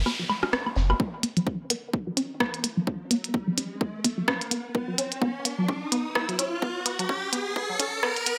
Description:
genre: minimal techno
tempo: 128 BPM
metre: 4/4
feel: swing 57% on 16ths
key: unclear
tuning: A4 = 440 Hz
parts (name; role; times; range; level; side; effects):
- rubbery square bass; bass; 0.0-0.9 s; F#1; -26 LUFS; equal; sidechain pumping
- noise sweep and riser; sound effects; 0.0-8.4 s; none; -35 LUFS; equal; none
- resonant blip pluck; riff; 0.1-8.3 s; F#3 to D4; -32 LUFS; equal; chorus, phaser, sidechain pumping, digital delay
- huge arena drum kit; drums; 0.1-0.9 s; hi-hat, snare drum; -47 LUFS; equal; none
- electronic rim click and woodblock; percussion; 0.1-1.0 s; none; -30 LUFS; equal; dub echo
- minimal click drum kit; drums; 0.5-8.4 s; hi-hat, rim click; -29 LUFS; equal; high-pass filter on snare, high-pass filter on hats, high-pass filter on room
- electronic kick drum; drums; 1.0-8.1 s; none; -32 LUFS; equal; overdrive, high-pass filter on kick
room: moderate studio reverb, RT60 0.6 s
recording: high-pass filter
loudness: -27 LUFS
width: mono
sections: 1.0-8.4 A section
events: noise sweep 0.0-1.0; build-up 1.0-8.4; riser 1.0-8.4; filter sweep on synth arpeggio sound 1.0-8.4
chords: 0.0 B5

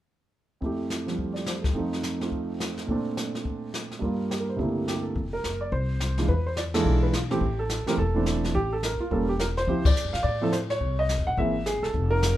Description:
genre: jazz piano trio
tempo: 212 BPM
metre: 4/4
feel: swing 62% on 8ths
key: F major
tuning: A4 = 440 Hz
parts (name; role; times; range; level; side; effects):
- warm grand piano; melody; 0.6-12.4 s; C2 to Gb5; -27 LUFS; right 2 dB; none
- jazz brush drum kit; drums; 0.6-12.4 s; brushed snare drum, hi-hat, kick drum, ride cymbal, snare drum; -29 LUFS; left 2 dB; none
- upright bass; bass; 5.2-12.4 s; E1 to A2; -27 LUFS; left 1 dB; none
room: light reverb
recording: minimal, uncompressed stereo recording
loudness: -24 LUFS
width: side -13 dB against mid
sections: 0.6-5.2 A section; 5.2-12.4 B section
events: band accent 6.7, 9.8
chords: 0.6 Fmaj9; 1.8 F7; 2.9 Bbmaj9; 4.0 Gm7; 4.6 C13; 5.2 F5; 6.3 E7b9; 7.4 Am7; 9.7 Dm9; 10.8 Caug

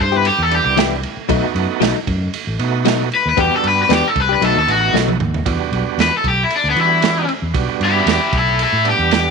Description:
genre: straight-eighth soul blues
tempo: 115 BPM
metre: 4/4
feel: swing 54% on 16ths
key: E minor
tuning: A4 = 440 Hz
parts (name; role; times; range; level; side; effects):
- cranked stack guitar; melody; 0.0-9.3 s; B3 to C5; -16 LUFS; left 3 dB; overdrive
- fingered electric bass; bass; 0.0-9.3 s; A1 to E3; -21 LUFS; equal; none
- direct-recorded clean electric guitar; stabs; 0.1-5.1 s; E3 to G4; -21 LUFS; left 14 dB; none
- crunchy breakbeat drum kit; drums; 0.2-9.3 s; kick drum, ride cymbal, snare drum, toms; -22 LUFS; right 8 dB; none
- bright tonewheel organ; accompaniment; 0.5-9.3 s; G3 to F#5; -23 LUFS; right 14 dB; slow rotary speaker, overdrive
room: light reverb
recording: 1960s-style stereo with parts hard left and right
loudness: -14 LUFS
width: side -4 dB against mid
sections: 0.0-5.5 A section; 5.5-9.3 A section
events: overdriven electric guitar solo 0.0-5.5, 5.5-9.3; drum fill 4.9-5.5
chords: 0.0 Cmaj7; 1.3 B7; 3.4 Em7; 4.4 B7; 5.5 Em7

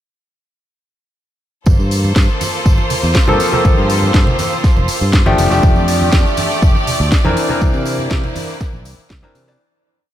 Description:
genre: nu-disco, nu disco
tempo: 121 BPM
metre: 4/4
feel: straight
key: unclear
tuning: A4 = 438 Hz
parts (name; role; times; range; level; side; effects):
- bright studio violin section; sustained chords; 1.7-9.6 s; A3 to D5; -21 LUFS; right 1 dB; sidechain pumping
- fingered electric bass; bass; 1.7-9.6 s; F1 to C3; -17 LUFS; equal; sidechain pumping
- electronic kick drum; drums; 1.7-9.2 s; none; -13 LUFS; equal; overdrive
- tambourine and congas; percussion; 1.7-9.6 s; none; -24 LUFS; right 3 dB; none
- house drum kit; drums; 1.9-9.6 s; hi-hat, snare drum; -23 LUFS; left 1 dB; overdrive
- bright concert grand piano; accompaniment; 3.3-9.6 s; E3 to D5; -18 LUFS; left 1 dB; sidechain pumping, low-pass filter, tape echo
room: moderate church reverb, RT60 3.8 s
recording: dreamy mix soaked in reverb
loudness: -11 LUFS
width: side -12 dB against mid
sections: 1.7-9.6 groove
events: filter sweep on grand piano 1.7-9.6; fade-out 7.0-9.6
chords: 1.7 F69; 7.4 C9

